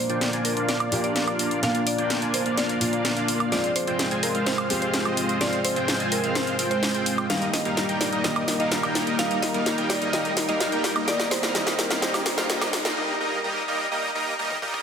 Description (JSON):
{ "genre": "EDM, festival progressive house", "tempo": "127 BPM", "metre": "4/4", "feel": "straight", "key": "Eb major", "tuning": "A4 = 441 Hz", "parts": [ { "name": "mallet-like synth pluck", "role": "melody", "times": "0.0-12.7 s", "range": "Bb4 to F5", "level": "-30 LUFS", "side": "equal", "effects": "chorus, vintage 12-bit sampler grit, digital delay" }, { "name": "dark baby grand piano", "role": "accompaniment", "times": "0.0-14.8 s", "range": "Bb2 to G4", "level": "-31 LUFS", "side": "left 1 dB", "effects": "none" }, { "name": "lush unison pad", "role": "sustained chords", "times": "0.0-12.9 s", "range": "G3 to D5", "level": "-32 LUFS", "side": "equal", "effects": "chorus, phaser" }, { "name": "dense compressed supersaw", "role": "riff", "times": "0.1-14.8 s", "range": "G3 to Ab5", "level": "-26 LUFS", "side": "equal", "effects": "low-pass filter, digital delay" }, { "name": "house drum kit", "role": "drums", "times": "0.1-14.8 s", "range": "hi-hat, snare drum, toms, woodblock", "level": "-26 LUFS", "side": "equal", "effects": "none" }, { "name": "riser", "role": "sound effects", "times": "10.3-13.0 s", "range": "none", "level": "-38 LUFS", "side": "equal", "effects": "none" } ], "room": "wet lush hall reverb, RT60 2.1 s", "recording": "dense, heavily limited modern master, high-pass filter", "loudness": "-22 LUFS", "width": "side -7 dB against mid", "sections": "0.0-14.8 A section", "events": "build-up 0.0-14.8; drum fill 0.0-13.0, 14.5-14.8; filter sweep on supersaw synth 0.0-14.8; break 13.0-14.8", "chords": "0.0 Bb; 3.5 Fm; 7.3 Eb; 11.1 Eb69", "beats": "0.21 0.69 1.16 | 1.63 2.10 2.58 3.05 | 3.52 3.99 4.46 4.94 | 5.41 5.88 6.36 6.83 | 7.30 7.77 8.24 8.72 | 9.19 9.66 10.13 10.61 | 11.08 11.55 12.02 12.50 | 12.97 13.44 13.91 14.39" }